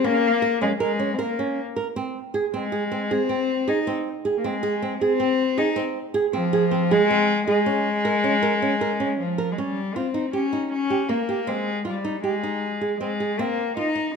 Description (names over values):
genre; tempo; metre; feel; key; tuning
contemporary instrumental, contemporary; 157 BPM; 5/4; straight; unclear; A4 = 439 Hz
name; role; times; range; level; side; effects
warm cello; melody; 0.0-14.1 s; F3 to Eb4; -23 LUFS; left 4 dB; none
flamenco guitar; arpeggios; 0.0-14.1 s; Bb3 to Bb4; -25 LUFS; right 5 dB; none
room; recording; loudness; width
moderate recital hall reverb, RT60 1.4 s; minimal, uncompressed stereo recording; -21 LUFS; side -6 dB against mid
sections
0.0-9.6 A section; 9.6-14.2 B section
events
none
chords
0.0 Absus24; 2.0 Ab; 7.7 Bbm7; 9.6 Eb7; 11.5 Fm9; 13.4 Cm7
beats
| 0.05 0.43 0.81 1.19 1.57 | 1.96 2.34 2.72 3.10 3.48 | 3.86 4.25 4.63 5.01 5.39 | 5.77 6.15 6.53 6.91 7.29 | 7.67 8.06 8.44 8.82 9.20 | 9.58 9.96 10.34 10.72 11.11 | 11.49 11.87 12.25 12.63 13.01 | 13.39 13.78